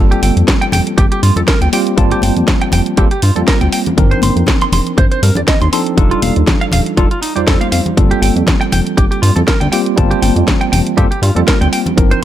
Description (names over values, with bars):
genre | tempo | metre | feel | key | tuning
nu-disco, nu disco | 120 BPM | 4/4 | swing 55% on 16ths | G minor | A4 = 439 Hz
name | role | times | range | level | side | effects
tine electric piano | accompaniment | 0.0-12.2 s | F3 to A5 | -17 LUFS | right 1 dB | medium stereo tremolo, digital delay
chorused synth bass | bass | 0.0-12.1 s | Eb1 to G2 | -14 LUFS | equal | sidechain pumping
direct-recorded clean electric guitar | riff | 0.1-12.2 s | Eb4 to C6 | -20 LUFS | right 3 dB | lush chorus, digital delay
house drum kit | drums | 0.1-12.2 s | hi-hat, snare drum | -19 LUFS | equal | none
congas | percussion | 0.2-12.0 s | none | -21 LUFS | left 3 dB | none
electronic kick drum | drums | 0.5-12.1 s | none | -13 LUFS | equal | none
room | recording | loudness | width
little or no reverb | none | -10 LUFS | side -12 dB against mid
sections
0.0-12.2 A section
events
none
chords
0.0 Gm11; 4.0 Cm11; 6.0 F13; 8.0 Gm11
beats
0.48 0.98 1.48 | 1.98 2.48 2.98 3.48 | 3.98 4.48 4.98 5.48 | 5.98 6.48 6.98 7.48 | 7.98 8.48 8.98 9.48 | 9.98 10.48 10.98 11.48 | 11.98